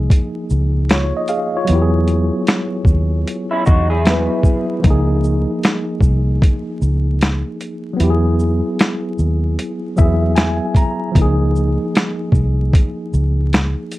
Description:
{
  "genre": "lo-fi hip hop",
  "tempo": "76 BPM",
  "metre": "4/4",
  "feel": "swing 63% on 16ths",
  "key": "unclear",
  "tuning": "A4 = 441 Hz",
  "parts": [
    { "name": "tine electric piano", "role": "accompaniment", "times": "0.0-14.0 s", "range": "F3 to Bb5", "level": "-20 LUFS", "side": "equal", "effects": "fast stereo tremolo, low-pass filter" },
    { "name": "vintage muted fingered electric bass", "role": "bass", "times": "0.0-13.7 s", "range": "C2 to E2", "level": "-16 LUFS", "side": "equal", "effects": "none" },
    { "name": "boom bap sampler-style drum kit", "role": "drums", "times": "0.1-14.0 s", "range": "finger snaps, hi-hat, kick drum, shaker, snare drum", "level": "-14 LUFS", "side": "equal", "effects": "none" },
    { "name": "electric guitar through a small old amp", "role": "second line", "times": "3.5-4.8 s", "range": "Db4 to G#4", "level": "-21 LUFS", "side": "equal", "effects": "analog chorus, low-pass filter, tape echo" }
  ],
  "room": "light reverb",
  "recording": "vinyl crackle",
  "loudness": "-14 LUFS",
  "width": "side -17 dB against mid",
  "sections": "0.0-14.0 A section",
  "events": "tine electric piano fill 9.6-11.2",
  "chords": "0.0 Dbadd9; 1.7 Eadd9; 4.8 Dbadd9; 8.0 Eadd9; 11.2 Dbmaj9"
}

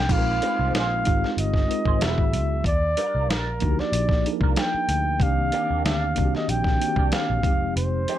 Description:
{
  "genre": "R&B, neo-soul",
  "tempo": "94 BPM",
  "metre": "4/4",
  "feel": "swing 55% on 16ths",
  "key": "unclear",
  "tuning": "A4 = 443 Hz",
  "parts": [
    { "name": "breathy flugelhorn", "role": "melody", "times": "0.0-8.2 s", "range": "Bb4 to G5", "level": "-26 LUFS", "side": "right 1 dB", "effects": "plate reverb" },
    { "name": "mellow tine electric piano", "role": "accompaniment", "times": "0.0-8.2 s", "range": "Eb3 to Bb4", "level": "-28 LUFS", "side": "equal", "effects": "medium stereo tremolo" },
    { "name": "vintage muted picked electric bass", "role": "bass", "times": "0.0-8.1 s", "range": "E1 to Eb2", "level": "-26 LUFS", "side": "equal", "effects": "none" },
    { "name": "dusty soul sampler-style drum kit", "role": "drums", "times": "0.1-8.2 s", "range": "crash cymbal, hi-hat, kick drum, snare drum", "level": "-25 LUFS", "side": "equal", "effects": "none" },
    { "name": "electric guitar through a small old amp", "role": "second line", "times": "0.4-8.2 s", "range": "Eb3 to C5", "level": "-33 LUFS", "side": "right 9 dB", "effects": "wah, wide subtle chorus, plate reverb, tape echo" }
  ],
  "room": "light reverb",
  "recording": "none",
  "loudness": "-20 LUFS",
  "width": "side -12 dB against mid",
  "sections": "0.1-8.2 A section",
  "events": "none",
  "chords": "0.1 Bb9sus4; 2.0 Emaj9; 2.6 Ebmaj9; 5.2 Cm9; 7.4 Fm9"
}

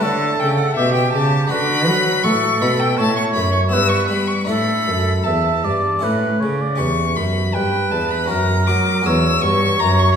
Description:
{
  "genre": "classical, baroque-style sonata movement with continuo",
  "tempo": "80 BPM",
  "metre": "3/4",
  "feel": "straight",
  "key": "unclear",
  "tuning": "A4 = 442 Hz",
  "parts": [
    { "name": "warm violin", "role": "melody", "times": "0.0-10.1 s", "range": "E5 to E6", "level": "-21 LUFS", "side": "left 5 dB", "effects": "none" },
    { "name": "mellow oboe", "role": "second line", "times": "0.0-10.2 s", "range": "F#4 to E5", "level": "-21 LUFS", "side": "right 4 dB", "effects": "none" },
    { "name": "harpsichord", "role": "accompaniment", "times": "0.0-10.2 s", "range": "E2 to C#5", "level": "-22 LUFS", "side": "left 1 dB", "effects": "none" },
    { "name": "rich cello", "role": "bass", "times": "0.0-10.2 s", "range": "E2 to G3", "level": "-20 LUFS", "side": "right 1 dB", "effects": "none" }
  ],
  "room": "wet recital hall reverb, RT60 1.5 s",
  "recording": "heard from further back in the room",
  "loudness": "-15 LUFS",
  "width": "side -7 dB against mid",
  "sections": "0.0-10.2 A section",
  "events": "none",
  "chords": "0.0 A; 1.5 Bm/D; 2.3 F#m/A; 3.7 Em/G; 4.5 Asus4; 6.0 A; 6.8 C#m7b5/E; 8.3 F#; 9.1 F#7/E"
}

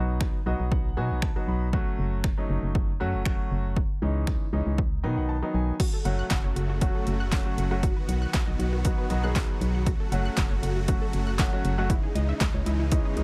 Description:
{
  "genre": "dance-pop",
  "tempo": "118 BPM",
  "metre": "4/4",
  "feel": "straight",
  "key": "F# dorian",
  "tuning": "A4 = 440 Hz",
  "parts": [
    { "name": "clear baby grand piano", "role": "accompaniment", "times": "0.0-13.2 s", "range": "D#3 to B5", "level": "-34 LUFS", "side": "equal", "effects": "sidechain pumping" },
    { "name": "organ-like FM bass", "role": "bass", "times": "0.0-13.2 s", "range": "F#1 to B2", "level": "-30 LUFS", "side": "equal", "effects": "sidechain pumping" },
    { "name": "deep house drum kit", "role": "drums", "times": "0.2-13.2 s", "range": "crash cymbal, finger snaps, handclaps, hi-hat, kick drum, snare drum", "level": "-29 LUFS", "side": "equal", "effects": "overdrive" },
    { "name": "supersaw chords", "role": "sustained chords", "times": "5.8-13.2 s", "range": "C#3 to F#4", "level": "-38 LUFS", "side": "equal", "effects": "sidechain pumping" },
    { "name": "unison pluck", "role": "arpeggios", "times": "5.8-13.1 s", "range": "E4 to F#6", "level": "-40 LUFS", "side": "equal", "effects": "sidechain pumping, digital delay" }
  ],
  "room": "little or no reverb",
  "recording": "none",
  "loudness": "-26 LUFS",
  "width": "mono",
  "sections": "0.0-5.8 A section; 5.8-13.2 B section",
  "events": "grand piano fill 0.2-1.7, 4.8-5.8; silent gap 5.3-5.8",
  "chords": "0.0 B; 1.7 F#m; 3.8 C#madd9; 4.8 B; 5.8 F#m; 7.8 B; 9.9 F#m; 11.9 C#madd9"
}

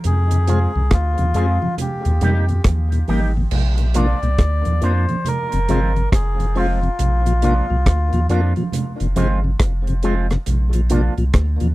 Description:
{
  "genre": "roots reggae",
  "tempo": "69 BPM",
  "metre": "4/4",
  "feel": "swing 63% on 16ths",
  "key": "unclear",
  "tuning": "A4 = 444 Hz",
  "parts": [
    { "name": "deep reggae drum kit", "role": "drums", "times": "0.0-11.7 s", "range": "crash cymbal, hi-hat, kick drum, rim click", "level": "-19 LUFS", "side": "equal", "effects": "none" },
    { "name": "congas", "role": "percussion", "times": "0.0-11.7 s", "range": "none", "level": "-26 LUFS", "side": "right 3 dB", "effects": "none" },
    { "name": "melodica", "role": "melody", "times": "0.1-8.3 s", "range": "F4 to D5", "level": "-26 LUFS", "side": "left 1 dB", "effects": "dub echo" },
    { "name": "warm sub bass", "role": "bass", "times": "0.1-11.7 s", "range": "F1 to F2", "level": "-18 LUFS", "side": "equal", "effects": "none" },
    { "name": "mellow tonewheel organ", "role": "accompaniment", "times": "0.3-11.7 s", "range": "Eb2 to F4", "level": "-25 LUFS", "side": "left 3 dB", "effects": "slow rotary speaker, dub echo" },
    { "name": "electric guitar with an envelope filter", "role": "accompaniment", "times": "0.5-11.1 s", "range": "F3 to Ab4", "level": "-28 LUFS", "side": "right 3 dB", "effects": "analog chorus, dub echo" }
  ],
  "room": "little or no reverb",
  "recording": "dry, close 1970s-style studio recording",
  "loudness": "-16 LUFS",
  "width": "side -18 dB against mid",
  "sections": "0.0-3.5 A section; 3.5-11.7 B section",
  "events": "none",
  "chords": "0.0 Fm; 1.8 Eb; 3.5 Bb; 5.3 Fm; 7.0 Bb; 8.7 Fm; 10.5 Bb"
}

